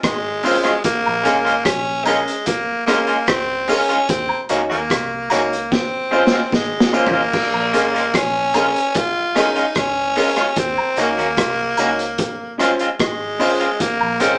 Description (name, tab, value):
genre	roots reggae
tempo	74 BPM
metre	4/4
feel	straight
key	Bb minor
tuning	A4 = 440 Hz
part	raspy tenor saxophone	melody	0.0-14.4 s	Ab3 to F4	-22 LUFS	equal	none
part	vintage muted fingered electric bass	bass	0.0-14.4 s	Ab1 to Eb2	-38 LUFS	equal	none
part	crunchy breakbeat drum kit	drums	0.0-14.4 s	crash cymbal, hi-hat, kick drum, rim click, snare drum, toms	-24 LUFS	equal	none
part	electric guitar at the edge of break-up	accompaniment	0.4-14.3 s	Ab3 to Gb4	-22 LUFS	equal	none
part	clear upright piano	stabs	0.4-14.4 s	Db4 to Db5	-24 LUFS	equal	none
part	tambourine and woodblock	percussion	0.5-14.4 s	none	-28 LUFS	equal	none
room	wet studio ambience, RT60 0.5 s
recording	band playing live in one room, vinyl crackle, small speaker sound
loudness	-18 LUFS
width	mono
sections	0.0-7.3 A section; 7.3-14.4 A section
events	drum fill 5.7-7.3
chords	0.0 Dbmaj7; 0.9 Bbm7; 4.1 Ebm7; 5.7 Dbmaj7; 7.3 Bbm7; 10.6 Ebm7; 12.2 Dbmaj7; 13.8 Bbm7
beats	0.04 | 0.85 1.66 2.47 3.28 | 4.09 4.90 5.71 6.52 | 7.33 8.14 8.95 9.76 | 10.57 11.38 12.19 12.99 | 13.80